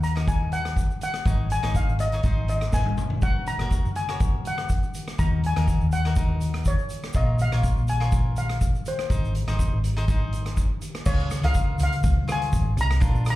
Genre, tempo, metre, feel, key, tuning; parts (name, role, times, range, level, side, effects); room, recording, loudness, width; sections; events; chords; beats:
calypso; 122 BPM; 4/4; swing 54% on 16ths; Db major; A4 = 445 Hz
steel pan; melody; 0.0-13.4 s; C5 to Bb5; -30 LUFS; left 2 dB; plate reverb, slapback echo
hollow-body short-scale fingered electric bass; bass; 0.0-13.4 s; Gb1 to Eb2; -24 LUFS; equal
street-band drum kit; drums; 0.0-13.4 s; crash cymbal, hi-hat, kick drum, rim click, snare drum, toms; -26 LUFS; equal
tube shaker; percussion; 0.0-13.4 s; -45 LUFS; left 2 dB
cavaquinho; accompaniment; 0.2-13.4 s; D4 to Db5; -36 LUFS; left 2 dB; plate reverb, slapback echo
little or no reverb; live gig heard through the venue's PA, club reverb; -21 LUFS; side -16 dB against mid
0.0-11.1 A section; 11.1-13.4 B section
drum fill 2.7-3.2
0.0 Ebm; 1.3 Absus4; 2.2 Ab7; 3.2 Gb; 5.2 Ebm; 7.1 Bbm; 9.1 Ab; 11.1 Db
0.28 0.77 | 1.26 1.75 2.24 2.73 | 3.22 3.71 4.21 4.70 | 5.18 5.67 6.17 6.66 | 7.15 7.64 8.13 8.62 | 9.11 9.60 10.09 10.58 | 11.07 11.55 12.04 12.53 | 13.02